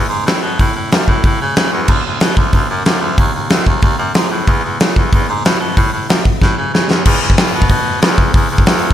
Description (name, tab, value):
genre	punk rock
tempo	186 BPM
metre	4/4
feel	straight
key	E major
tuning	A4 = 440 Hz
part	raspy baritone saxophone	bass	0.0-8.9 s	C#2 to C#3	-17 LUFS	equal	none
part	big rock drum kit	drums	0.3-8.9 s	crash cymbal, hi-hat, kick drum, snare drum	-12 LUFS	equal	none
room	little or no reverb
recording	none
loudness	-11 LUFS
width	side -11 dB against mid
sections	0.0-7.1 A section; 7.1-8.9 B section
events	drum fill 6.4-7.1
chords	none